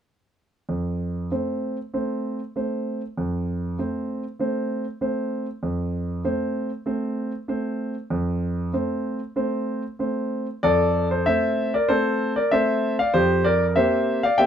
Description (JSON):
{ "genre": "classical-period piano sonatina", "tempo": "96 BPM", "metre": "4/4", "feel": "straight", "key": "F major", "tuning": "A4 = 440 Hz", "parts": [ { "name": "clear concert grand piano", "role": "solo", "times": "0.7-14.5 s", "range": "F2 to G5", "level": "-22 LUFS", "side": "equal", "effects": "none" } ], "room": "light reverb", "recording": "dark, warm production", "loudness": "-22 LUFS", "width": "side -8 dB against mid", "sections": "0.7-10.6 A section; 10.6-14.5 B section", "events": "none", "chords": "0.7 F; 13.1 C7/F" }